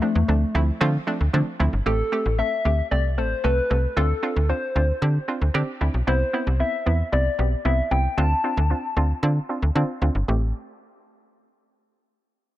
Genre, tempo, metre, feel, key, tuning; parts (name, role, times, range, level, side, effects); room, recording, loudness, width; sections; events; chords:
dance-pop; 114 BPM; 4/4; straight; A minor; A4 = 440 Hz
soft struck synth lead; melody; 0.0-9.8 s; A3 to A5; -26 LUFS; left 2 dB; chorus, low-pass filter, ping-pong delay
hollow square pluck; accompaniment; 0.0-10.5 s; F3 to A4; -27 LUFS; right 2 dB; chorus, low-pass filter
slap-like FM bass; bass; 0.2-10.5 s; G1 to D3; -21 LUFS; equal
digital ambience; -20 LUFS; side -14 dB against mid
0.0-1.9 A section; 1.9-10.3 B section; 10.3-12.4 C section
0.0 Dm7; 1.9 Am7; 4.0 Dm7; 6.1 Cmaj7; 8.2 Dm7; 10.3 Am7